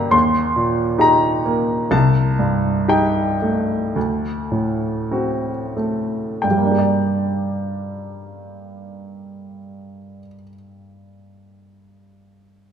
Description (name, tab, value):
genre	classical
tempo	44-71 BPM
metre	4/4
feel	rubato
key	G minor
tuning	A4 = 442 Hz
part	clear baby grand piano	melody	0.0-12.7 s	C2 to C6	-17 LUFS	equal	none
room	wet scoring stage reverb, RT60 2.0 s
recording	minimal, uncompressed stereo recording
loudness	-17 LUFS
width	side -8 dB against mid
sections	0.0-6.4 A section; 6.4-11.6 B section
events	slowing down 0.0-6.4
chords	0.1 Eb6; 1.9 Am7b5/C; 3.9 D7; 6.4 Gm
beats	0.13 1.00 | 1.91 2.89 3.95 5.12 | 6.43 7.73 9.01 10.30